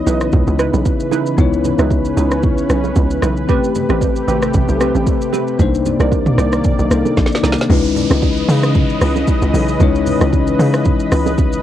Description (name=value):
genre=amapiano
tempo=114 BPM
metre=4/4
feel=swing 55% on 16ths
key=C# minor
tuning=A4 = 441 Hz
part: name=bell-like tine electric piano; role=accompaniment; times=0.0-11.6 s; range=G#3 to C#5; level=-19 LUFS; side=left 8 dB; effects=cassette tape
part: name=lush unison pad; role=sustained chords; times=0.0-11.6 s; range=C3 to D#5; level=-20 LUFS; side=right 1 dB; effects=chorus, sidechain pumping, cassette tape
part: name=punchy chord stab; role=stabs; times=0.0-7.6 s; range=C4 to D5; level=-23 LUFS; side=right 8 dB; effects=chorus, cassette tape, analog delay
part: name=tight log drum bass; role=bass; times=0.1-11.6 s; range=G#1 to C#3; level=-18 LUFS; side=equal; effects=none
part: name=deep house drum kit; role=drums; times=0.1-11.6 s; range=hi-hat, kick drum, rim click, shaker, snare drum, toms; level=-17 LUFS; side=equal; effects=cassette tape
part: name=bongos and congas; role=percussion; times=0.3-11.5 s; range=none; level=-24 LUFS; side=right 9 dB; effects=none
part: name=downlifter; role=sound effects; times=7.7-11.6 s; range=none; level=-29 LUFS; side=right 1 dB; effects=none
room=little or no reverb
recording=home recording on cassette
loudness=-13 LUFS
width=side -11 dB against mid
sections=0.0-7.7 A section; 7.7-11.6 B section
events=drum fill 7.2-7.7; drop 7.7-11.6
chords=0.0 C#m9; 3.5 Am9; 5.6 Cm9; 7.7 C#m9